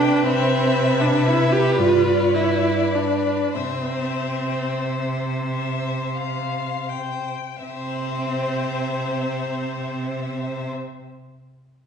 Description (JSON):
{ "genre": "classical, slow romantic movement for string quartet", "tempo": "27-41 BPM (dotted quarters)", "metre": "6/8", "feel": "rubato", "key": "C major", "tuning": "A4 = 440 Hz", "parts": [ { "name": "warm violin", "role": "melody", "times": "0.0-10.7 s", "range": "D5 to G5", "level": "-29 LUFS", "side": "left 7 dB", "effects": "none" }, { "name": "warm violin", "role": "second line", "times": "0.0-10.7 s", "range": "B4 to C5", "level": "-28 LUFS", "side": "left 4 dB", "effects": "none" }, { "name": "rich viola", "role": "accompaniment", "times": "0.0-10.7 s", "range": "C4 to G4", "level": "-22 LUFS", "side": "right 2 dB", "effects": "none" }, { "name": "rich cello", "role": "bass", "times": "0.0-10.7 s", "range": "G2 to C3", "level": "-26 LUFS", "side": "right 2 dB", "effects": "none" } ], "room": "wet recital hall reverb, RT60 1.4 s", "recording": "heard from further back in the room, nothing above 10.3 kHz", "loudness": "-20 LUFS", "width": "side -7 dB against mid", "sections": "0.0-7.6 A section; 7.6-11.7 B section", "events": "slowing down 0.0-7.6", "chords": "0.3 C; 1.8 G; 3.6 C" }